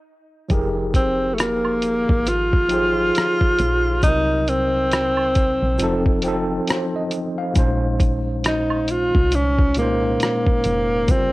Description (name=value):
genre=lo-fi hip hop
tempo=68 BPM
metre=4/4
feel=swing 60% on 16ths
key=F minor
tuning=A4 = 444 Hz
part: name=tine electric piano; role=accompaniment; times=0.5-11.3 s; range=Bb2 to F5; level=-24 LUFS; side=equal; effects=overdrive, fast stereo tremolo, cassette tape, low-pass filter, plate reverb
part: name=woody FM bass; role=bass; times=0.5-11.3 s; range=F1 to C2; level=-26 LUFS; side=equal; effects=tube saturation
part: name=lo-fi sampler-style drum kit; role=drums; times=0.5-11.3 s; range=hi-hat, kick drum, rim click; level=-19 LUFS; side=equal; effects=cassette tape
part: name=tube shaker and woodblock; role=percussion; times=0.5-11.3 s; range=none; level=-35 LUFS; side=right 4 dB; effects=none
part: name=breathy tenor saxophone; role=melody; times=1.0-11.3 s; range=A3 to F4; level=-20 LUFS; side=equal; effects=low-pass filter, cassette tape, plate reverb
room=moderate studio reverb, RT60 0.6 s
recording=home recording on cassette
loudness=-17 LUFS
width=side -19 dB against mid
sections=0.5-11.3 A section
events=stop 0.0-0.5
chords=0.5 Fm11; 4.0 Cm7b5; 5.8 F7; 7.6 Bbm11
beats=| 0.50 1.38 2.26 3.15 | 4.03 4.91 5.79 6.67 | 7.56 8.44 9.32 10.20 | 11.09